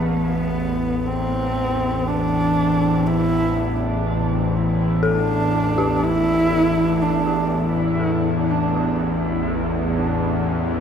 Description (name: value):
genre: dark ambient drone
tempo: free time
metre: none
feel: none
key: unclear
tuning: A4 = 440 Hz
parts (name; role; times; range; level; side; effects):
- warm horsehead fiddle; melody; 0.0-7.7 s; B3 to E4; -22 LUFS; right 1 dB; dub echo
- dark detuned synth bell; arpeggios; 0.0-10.8 s; G4 to A4; -29 LUFS; left 4 dB; chorus, dub echo
- bowed-like drone; drone; 0.0-10.8 s; A1 to E2; -20 LUFS; equal; built-in reverb
room: wet plate reverb, RT60 3.4 s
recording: echo-heavy mix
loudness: -18 LUFS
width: side -7 dB against mid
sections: 0.0-10.8 A section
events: none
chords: 0.0 A5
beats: free time